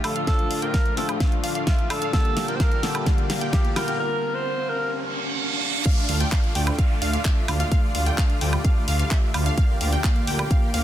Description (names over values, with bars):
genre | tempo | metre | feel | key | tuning
EDM, festival progressive house | 129 BPM | 4/4 | straight | D minor | A4 = 438 Hz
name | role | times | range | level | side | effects
clear alto saxophone | melody | 0.0-4.9 s | F4 to C5 | -28 LUFS | right 1 dB | tape echo
warm grand piano | accompaniment | 0.0-5.9 s | D3 to F4 | -32 LUFS | left 6 dB | vintage 12-bit sampler grit, sidechain pumping
warm studio string section | sustained chords | 0.0-10.8 s | D3 to G4 | -35 LUFS | left 2 dB | sidechain pumping, low-pass filter
wide unison pluck | arpeggios | 0.0-10.8 s | E5 to G5 | -32 LUFS | right 1 dB | sidechain pumping, tape echo
dense compressed supersaw | riff | 0.0-10.8 s | A3 to G5 | -31 LUFS | equal | sidechain pumping, low-pass filter, tape echo
pop drum kit | drums | 0.0-10.8 s | crash cymbal, handclaps, hi-hat, snare drum, woodblock | -29 LUFS | equal | soft clipping on snare
riser, reverse cymbal and downlifter | sound effects | 3.7-9.6 s | none | -31 LUFS | right 3 dB | none
electronic kick drum | drums | 0.3-10.6 s | none | -21 LUFS | equal | none
wide detuned saw bass | bass | 6.1-10.8 s | D2 | -23 LUFS | equal | chorus, sidechain pumping
room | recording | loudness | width
light reverb | dense, heavily limited modern master | -20 LUFS | side -12 dB against mid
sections
0.0-5.9 A section; 5.9-10.8 B section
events
build-up 0.0-5.9; drum fill 0.0-4.0; filter sweep on supersaw synth 0.0-5.9; filter sweep on string section 0.0-5.9; riser 3.7-5.9; break 4.0-5.9; reverse cymbal 4.9-5.9; drop 5.9-10.8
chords
0.0 Dm; 2.1 Bb6; 5.9 Dm; 9.6 Bb6/D